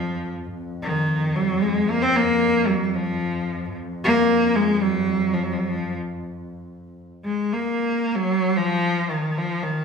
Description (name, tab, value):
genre	persian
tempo	75 BPM (dotted quarters)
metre	6/8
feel	straight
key	F dastgah shur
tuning	A4 = 440 Hz
part	clear cello	melody	0.0-9.8 s	Eb3 to C4	-20 LUFS	equal	none
part	dark double bass	drone	0.0-7.0 s	F2	-30 LUFS	left 2 dB	none
room	wet large studio reverb, RT60 1.3 s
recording	band playing live in one room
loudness	-20 LUFS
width	side -5 dB against mid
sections	0.0-6.9 A section; 6.9-9.8 B section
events	none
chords	none